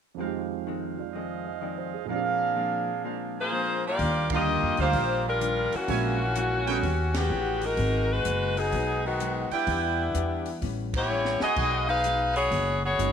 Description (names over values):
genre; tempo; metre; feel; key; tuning
jazz, big band swing; 127 BPM; 4/4; swing 67% on 8ths; unclear; A4 = 444 Hz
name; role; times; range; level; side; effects
warm concert grand piano; accompaniment; 0.1-6.8, 13.0-13.1 s; F2 to Eb5; -33 LUFS; right 13 dB; none
vintage hollow-body jazz guitar; accompaniment; 0.2-13.1 s; F2 to G4; -38 LUFS; left 14 dB; none
clear trumpet section; stabs; 0.2-12.0 s; D4 to D6; -32 LUFS; right 7 dB; none
clear saxophone section; melody; 3.4-13.1 s; Db3 to F5; -26 LUFS; left 2 dB; none
upright bass; bass; 4.0-13.1 s; Gb1 to F2; -29 LUFS; equal; none
open jazz drum kit; drums; 4.0-13.1 s; crash cymbal, hi-hat, kick drum, ride cymbal, snare drum; -37 LUFS; equal; none
room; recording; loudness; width
moderate plate reverb, RT60 2.0 s, studio reverb; 1960s-style stereo with parts hard left and right; -24 LUFS; side -8 dB against mid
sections
0.2-4.0 A section; 4.0-13.1 B section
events
band accent 4.2, 7.1, 10.9; drum fill 11.1-11.6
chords
0.2 Fm7; 2.1 Bb7; 4.0 Ebmaj9; 5.9 Bbm7b5; 6.8 Eb7alt; 7.8 Abm7; 9.7 Em7; 10.6 A9; 11.6 B6